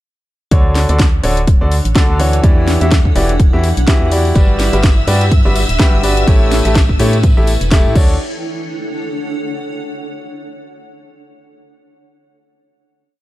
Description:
piano house; 125 BPM; 4/4; swing 57% on 16ths; D major; A4 = 440 Hz
bright concert grand piano; riff; 0.5-8.1 s; D3 to E5; -17 LUFS; equal; sidechain pumping, ping-pong delay
organ-like FM bass; bass; 0.5-8.2 s; D1 to A2; -15 LUFS; equal; sidechain pumping
electronic kick drum; drums; 0.5-8.1 s; -11 LUFS; equal; overdrive, small room ambience
house drum kit; drums; 0.5-8.1 s; crash cymbal, hi-hat, snare drum; -21 LUFS; equal; overdrive, small room ambience
granular cloud pad; texture; 1.8-10.1 s; D4 to F#5; -25 LUFS; equal; built-in reverb, sidechain pumping
rich studio violin section; sustained chords; 4.4-8.0 s; E5 to E6; -24 LUFS; left 1 dB; sidechain pumping
tambourine; percussion; 4.4-8.2 s; -30 LUFS; left 3 dB
studio ambience; dark, warm production; -10 LUFS; side -16 dB against mid
0.5-8.2 drop; 8.2-10.1 final chord
drop 0.5-8.2
0.5 Dmaj7; 2.4 Em9; 4.4 Gmaj7; 6.3 A7; 8.0 Dmaj7

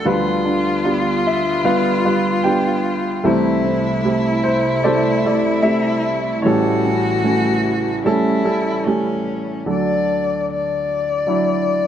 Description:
acoustic folk-pop ballad; 75 BPM; 4/4; straight; A4 = 440 Hz
warm upright piano; melody; 0.0-11.9 s; A1 to G5; -19 LUFS; equal
rich cello; second line; 0.0-11.9 s; C#4 to D5; -21 LUFS; left 2 dB; tape echo
dark chamber string section; sustained chords; 0.0-9.6 s; C3 to B4; -28 LUFS; left 1 dB
felt-muted upright piano; arpeggios; 0.0-9.8 s; E3 to G4; -22 LUFS; right 4 dB
light reverb; -16 LUFS; side -9 dB against mid
0.0-9.7 A section; 9.7-11.9 B section
cello solo 9.7-11.9
0.0 G7/D; 3.2 C6; 6.4 A7; 9.7 D

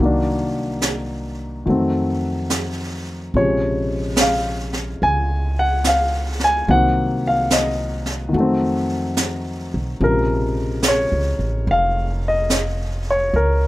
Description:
jazz ballad; 72 BPM; 4/4; swing 68% on 8ths; Bb minor; A4 = 440 Hz
warm baby grand piano; accompaniment; 0.0-13.7 s; C3 to Ab5; -19 LUFS; left 1 dB
upright bass; bass; 0.0-13.7 s; F1 to F2; -23 LUFS; equal
jazz brush drum kit; drums; 0.8-13.7 s; brushed snare drum, hi-hat, snare drum; -23 LUFS; right 2 dB
light reverb; rough home demo mix; -17 LUFS; side -16 dB against mid
0.0-13.7 A section
0.0 Cm7b5; 1.7 F7b9; 3.3 Bbm9; 6.7 Cm7b5; 8.3 F7b9; 10.0 Bbm7

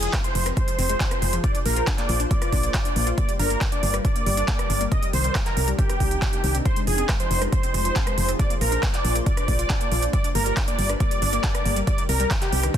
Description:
uplifting trance; 138 BPM; 4/4; straight; F dorian; A4 = 438 Hz
big supersaw lead; melody; 0.0-12.8 s; G4 to Eb5; -27 LUFS; right 1 dB; sidechain pumping, low-pass filter, digital delay
shimmering ambient pad; sustained chords; 0.0-12.8 s; C3 to D5; -33 LUFS; left 1 dB; chorus, built-in reverb, sidechain pumping
wide unison pluck; arpeggios; 0.0-12.8 s; C3 to F4; -33 LUFS; left 6 dB; sidechain pumping, tape echo
solid FM bass; bass; 0.0-12.7 s; F1 to C2; -25 LUFS; equal; tube saturation, sidechain pumping
big-room dance drum kit; drums; 0.0-12.8 s; handclaps, hi-hat, rim click; -28 LUFS; right 2 dB; overdrive, sidechain pumping on hats, sidechain pumping on cymbals
electronic kick drum; drums; 0.1-12.8 s; -24 LUFS; equal
digital ambience; dense, heavily limited modern master; -20 LUFS; side -10 dB against mid
0.0-12.8 A section
0.0 Fm; 1.4 Bbadd9; 3.2 Gm; 4.9 Cmadd9; 6.7 Fm; 8.4 Bbadd9; 10.1 Gm; 11.9 Cmadd9

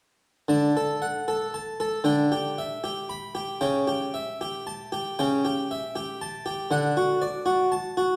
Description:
classical, baroque-style suite movement for harpsichord; 78 BPM (dotted quarters); 12/8; rubato; D major; A4 = 440 Hz
harpsichord; solo; 0.5-8.2 s; C#3 to B5; -27 LUFS; equal
wet recital hall reverb, RT60 1.8 s; heard from further back in the room; -27 LUFS; mono
0.5-8.2 A section
0.5 D; 2.1 Em7/D; 3.6 A7/C#; 6.7 D

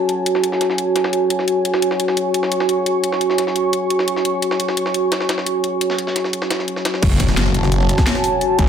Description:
dark technical drum and bass; 173 BPM; 4/4; straight; F# minor; A4 = 440 Hz
dark analog pad; sustained chords; 0.0-8.7 s; F#4 to C#6; -18 LUFS; right 1 dB; chorus, sidechain pumping
drum and bass drum kit; drums; 0.1-8.7 s; crash cymbal, hi-hat, snare drum; -24 LUFS; left 2 dB; overdrive
jungle sampler-style drum kit; drums; 0.1-8.7 s; hi-hat, snare drum; -26 LUFS; equal; high-pass filter on hats, low-pass filter on hats, high-pass filter on snare, low-pass filter on snare
snarling distorted saw bass; bass; 7.0-8.7 s; F#1 to G#1; -17 LUFS; left 1 dB; distortion, overdrive, sidechain pumping
electronic kick drum; drums; 7.0-8.7 s; -17 LUFS; equal; overdrive
impact; sound effects; 7.0-8.4 s; -22 LUFS; equal
wet plate reverb, RT60 1.2 s; dreamy mix soaked in reverb; -16 LUFS; side -8 dB against mid
0.0-7.0 A section; 7.0-8.7 B section
drop 7.0-8.7; impact 7.0-8.4
0.0 F#m

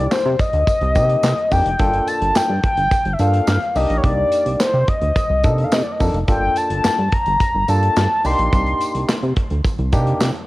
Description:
early-eighties boogie funk; 107 BPM; 4/4; straight; A4 = 440 Hz
mellow horn-like synth lead; melody; 0.0-9.1 s; C5 to C6; -19 LUFS; left 1 dB; chorus, cassette tape, tape echo
barky tine electric piano; accompaniment; 0.0-10.3 s; Bb3 to A4; -24 LUFS; equal; overdrive
chorused synth bass; bass; 0.0-10.3 s; F1 to C3; -19 LUFS; equal
modern studio drum kit; drums; 0.1-10.5 s; handclaps, hi-hat, kick drum, snare drum; -21 LUFS; equal; cassette tape
tambourine; percussion; 0.1-10.3 s; -37 LUFS; right 6 dB
light reverb, studio ambience; home recording on cassette; -15 LUFS; side -18 dB against mid
0.0-10.5 A section
0.0 Cm9; 1.8 Gm9; 3.8 Cm9; 6.3 Gm9; 8.2 Cm9

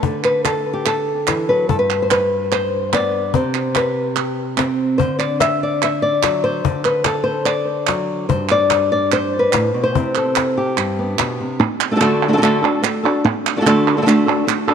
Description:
flamenco; 145 BPM; 4/4; straight; A4 = 439 Hz
flamenco guitar; melody; 0.0-14.7 s; G2 to E5; -16 LUFS; left 1 dB; tape echo
cajon; percussion; 0.0-11.4 s; -23 LUFS; left 8 dB
palmas hand claps; percussion; 0.2-14.7 s; -22 LUFS; right 14 dB
moderate plate reverb, RT60 2.7 s; 1960s-style stereo with parts hard left and right; -15 LUFS; side -7 dB against mid
0.0-11.6 A section; 11.6-14.7 B section
0.0 D5; 1.7 G; 3.3 C5; 5.0 D; 8.3 G; 9.9 C; 10.8 G; 11.6 D

